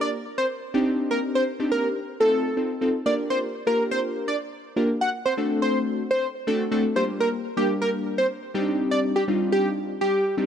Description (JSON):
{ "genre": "pop", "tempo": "123 BPM", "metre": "4/4", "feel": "straight", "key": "Bb major", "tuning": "A4 = 440 Hz", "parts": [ { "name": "plucky unison lead", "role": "melody", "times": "0.0-10.4 s", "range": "G4 to F#5", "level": "-25 LUFS", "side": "equal", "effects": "tape echo" }, { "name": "glassy digital keys", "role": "accompaniment", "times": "0.0-10.5 s", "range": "G3 to Bb4", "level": "-24 LUFS", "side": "left 1 dB", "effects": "chorus" } ], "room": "light reverb, digital ambience", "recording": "none", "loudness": "-22 LUFS", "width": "side -8 dB against mid", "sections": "0.0-2.9 A section; 2.9-10.5 B section", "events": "build-up 0.0-2.9; drop 2.9-10.5", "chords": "0.0 Bb6; 0.7 Cmadd9; 2.0 F7; 2.9 Bb6; 4.9 D7; 6.8 Bb6; 8.5 Cmadd9", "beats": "0.01 0.50 | 0.99 1.47 1.96 2.45 | 2.94 3.42 3.91 4.40 | 4.89 5.38 5.86 6.35 | 6.84 7.33 7.82 8.30 | 8.79 9.28 9.77 10.26" }